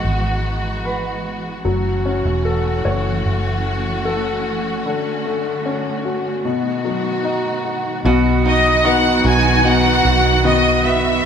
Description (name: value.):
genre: pop ballad.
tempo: 75 BPM.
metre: 4/4.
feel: straight.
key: unclear.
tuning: A4 = 441 Hz.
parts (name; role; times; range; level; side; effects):
clear symphonic violin section; melody; 0.0-0.1, 8.5-11.3 s; D#5 to G#5; -15 LUFS; equal; none.
clear baby grand piano; accompaniment; 0.0-11.3 s; B2 to D#5; -21 LUFS; left 4 dB; none.
warm symphonic string section; sustained chords; 0.0-11.2 s; D3 to F#4; -23 LUFS; equal; none.
vintage muted fingered electric bass; bass; 0.0-11.2 s; E1 to B1; -20 LUFS; right 1 dB; none.
fingerpicked steel-string acoustic guitar; arpeggios; 8.1-11.3 s; B2 to F#4; -20 LUFS; right 4 dB; none.
room: wet large studio reverb, RT60 1.2 s.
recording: band playing live in one room.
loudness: -15 LUFS.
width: side -7 dB against mid.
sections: 0.0-8.1 A section; 8.1-11.3 B section.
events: none.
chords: 0.0 G#m7; 1.7 F#m7; 4.9 Dmaj7; 6.5 B7; 8.1 B.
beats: 0.05 0.85 | 1.65 2.45 3.25 4.05 | 4.85 5.65 6.45 7.25 | 8.05 8.85 9.65 10.45 | 11.25.